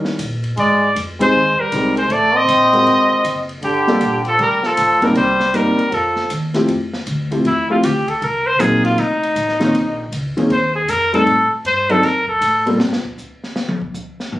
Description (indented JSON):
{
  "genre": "jazz, small-group swing and bop",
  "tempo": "157 BPM",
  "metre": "4/4",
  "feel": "swing 64% on 8ths",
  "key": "unclear",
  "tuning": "A4 = 440 Hz",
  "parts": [
    { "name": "warm grand piano", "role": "accompaniment", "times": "0.0-12.8 s", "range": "Eb3 to C5", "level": "-17 LUFS", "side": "left 1 dB", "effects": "none" },
    { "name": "upright bass", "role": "bass", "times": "0.0-12.9 s", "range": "F1 to Bb2", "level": "-26 LUFS", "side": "equal", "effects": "none" },
    { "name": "open jazz drum kit", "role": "drums", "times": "0.0-14.4 s", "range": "hi-hat, kick drum, ride cymbal, snare drum, toms", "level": "-28 LUFS", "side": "equal", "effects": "none" },
    { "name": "clear trumpet", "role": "melody", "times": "0.6-12.6 s", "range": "Eb4 to Eb5", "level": "-16 LUFS", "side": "equal", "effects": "none" },
    { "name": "bright trombone", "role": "second line", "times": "0.6-6.3 s", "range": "D3 to C4", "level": "-18 LUFS", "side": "right 1 dB", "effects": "none" }
  ],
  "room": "moderate studio reverb, RT60 0.5 s",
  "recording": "recorded on a phone in the room, studio ambience, compression",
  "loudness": "-14 LUFS",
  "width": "side -15 dB against mid",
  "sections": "0.0-6.7 A section; 6.7-14.4 B section",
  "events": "band accent 1.1; trumpet solo 6.7-14.4; drum solo 12.8-14.4",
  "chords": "0.0 Eb7b9; 0.6 Abmaj7; 2.1 Adim; 2.9 Ab13; 3.6 Gm9; 5.2 Cm7; 5.9 F9; 6.7 Fmaj9; 8.2 Cm7b5; 9.0 F7b13; 9.7 Bbmadd9; 11.3 Am7b5; 12.0 F#dim; 12.8 N.C."
}